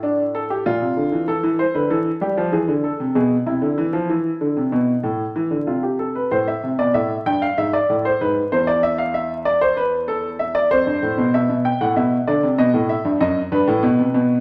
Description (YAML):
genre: classical, baroque-style two-part invention for grand piano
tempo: 96 BPM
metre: 4/4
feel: straight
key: A minor from 6.3 s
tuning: A4 = 441 Hz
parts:
  - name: warm grand piano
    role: solo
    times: 0.0-14.4 s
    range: E2 to G5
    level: -20 LUFS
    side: equal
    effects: none
room: wet large studio reverb, RT60 1.3 s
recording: vinyl crackle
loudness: -20 LUFS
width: mono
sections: 0.0-6.3 A section; 6.3-14.4 B section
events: none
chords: 0.0 Dm/A; 1.3 Am; 2.5 E; 3.8 E5; 5.0 Am; 7.6 E/G#; 8.8 E5; 10.1 Am/E; 11.3 Em; 12.6 B; 13.8 B5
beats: 0.03 0.65 | 1.28 1.90 2.53 3.15 | 3.77 4.41 5.04 5.67 | 6.31 6.94 7.58 8.20 | 8.83 9.46 10.08 10.71 | 11.34 11.96 12.59 13.21 | 13.83